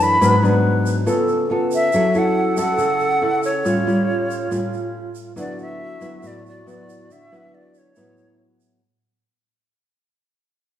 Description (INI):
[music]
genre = bossa nova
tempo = 139 BPM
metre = 4/4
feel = straight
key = D major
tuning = A4 = 440 Hz
[part]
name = breathy jazz flute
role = melody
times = 0.0-8.4 s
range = C#5 to B5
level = -20 LUFS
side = equal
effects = none
[part]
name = nylon-string guitar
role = accompaniment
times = 0.0-8.8 s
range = F#2 to A4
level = -20 LUFS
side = equal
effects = none
[part]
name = tube shaker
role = percussion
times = 0.0-8.8 s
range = none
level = -38 LUFS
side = right 7 dB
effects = none
[part]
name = mellow alto flute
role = second line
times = 0.2-8.6 s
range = E#4 to B4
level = -26 LUFS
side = equal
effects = none
[sound]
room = moderate recital hall reverb, RT60 1.4 s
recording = recorded in a church or concert hall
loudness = -16 LUFS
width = side -10 dB against mid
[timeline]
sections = 0.0-8.8 A section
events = fade-out 0.0-8.8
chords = 0.2 G#m7b5; 1.1 C#7b13; 1.9 F#m7; 3.7 Aaug7; 5.4 D69